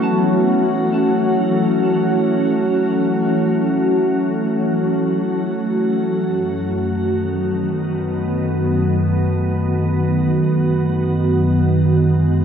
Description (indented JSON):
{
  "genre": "ambient",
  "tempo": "free time",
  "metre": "none",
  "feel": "none",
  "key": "unclear",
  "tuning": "A4 = 441 Hz",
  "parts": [
    { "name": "glassy FM pad", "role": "sustained chords", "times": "0.0-12.4 s", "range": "F#2 to F#4", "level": "-16 LUFS", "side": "equal", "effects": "ensemble chorus, built-in reverb" },
    { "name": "clean electric guitar", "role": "arpeggios", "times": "0.0-2.2 s", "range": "D#4 to A5", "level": "-33 LUFS", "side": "right 4 dB", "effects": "tremolo, ping-pong delay" },
    { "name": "overtone-sweeping drone", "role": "drone", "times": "0.0-6.4 s", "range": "F#3 to F#4", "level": "-27 LUFS", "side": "equal", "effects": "chorus, built-in reverb, phaser" }
  ],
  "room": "wet concert hall reverb, RT60 2.1 s",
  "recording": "none",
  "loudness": "-16 LUFS",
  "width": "side -8 dB against mid",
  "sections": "0.0-6.2 A section; 6.2-12.4 B section",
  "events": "none",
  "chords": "0.0 F#m7; 6.2 B7/F#; 11.0 G#m7/F#"
}